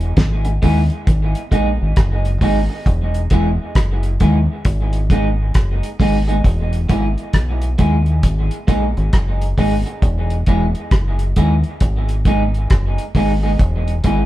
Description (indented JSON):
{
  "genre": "roots reggae",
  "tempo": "67 BPM",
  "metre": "4/4",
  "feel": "swing 62% on 16ths",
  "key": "G# minor",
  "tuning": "A4 = 437 Hz",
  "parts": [
    { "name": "deep dub fingered electric bass", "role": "bass", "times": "0.0-14.3 s", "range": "E1 to D#2", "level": "-18 LUFS", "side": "equal", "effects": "none" },
    { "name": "cloth-damped thuddy drum kit", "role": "drums", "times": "0.0-14.3 s", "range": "hi-hat, kick drum, rim click, snare drum", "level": "-16 LUFS", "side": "equal", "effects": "none" },
    { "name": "electric guitar at the edge of break-up", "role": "accompaniment", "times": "0.5-14.2 s", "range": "G#3 to G#4", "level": "-21 LUFS", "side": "right 1 dB", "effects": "spring reverb, dub echo" }
  ],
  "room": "moderate studio reverb, RT60 0.8 s",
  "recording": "band playing live in one room",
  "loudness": "-14 LUFS",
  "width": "side -15 dB against mid",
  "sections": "0.0-1.1 A section; 1.1-14.3 B section",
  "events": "none",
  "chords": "0.0 E; 1.1 G#m; 2.9 E; 4.7 G#m; 6.4 E; 8.2 G#m; 10.0 E; 11.8 G#m; 13.6 E"
}